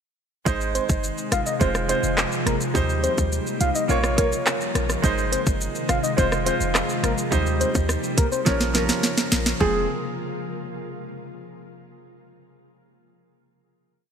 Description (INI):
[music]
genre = dancehall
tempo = 105 BPM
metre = 4/4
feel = straight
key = F minor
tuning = A4 = 442 Hz
[part]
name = clear concert grand piano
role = accompaniment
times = 0.5-9.9 s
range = F3 to Db5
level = -27 LUFS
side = right 5 dB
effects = none
[part]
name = ethereal airy pad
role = sustained chords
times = 0.8-9.9 s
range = C3 to Bb4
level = -29 LUFS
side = left 2 dB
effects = ensemble chorus, built-in reverb, sidechain pumping
[part]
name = clean 808-style bass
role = bass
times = 0.5-9.9 s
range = F1 to Eb2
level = -26 LUFS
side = equal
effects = none
[part]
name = island pop drum kit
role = drums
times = 0.5-9.7 s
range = handclaps, hi-hat, kick drum, rim click, shaker, snare drum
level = -24 LUFS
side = equal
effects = overdrive
[part]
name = soft octave-layered synth lead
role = melody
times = 0.7-9.9 s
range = Ab4 to F5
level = -28 LUFS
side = left 2 dB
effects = chorus, ping-pong delay
[sound]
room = moderate lush hall reverb, RT60 2.9 s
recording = bright 1980s-style digital production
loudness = -20 LUFS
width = side -7 dB against mid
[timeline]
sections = 0.5-9.6 chorus; 9.6-11.9 final chord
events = drum fill 8.5-9.6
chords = 0.5 Ab; 1.6 Fm; 2.8 Eb6; 3.9 Bbm; 5.0 Ab; 6.2 Fm; 7.3 Eb6; 8.5 Bbm; 9.6 Fm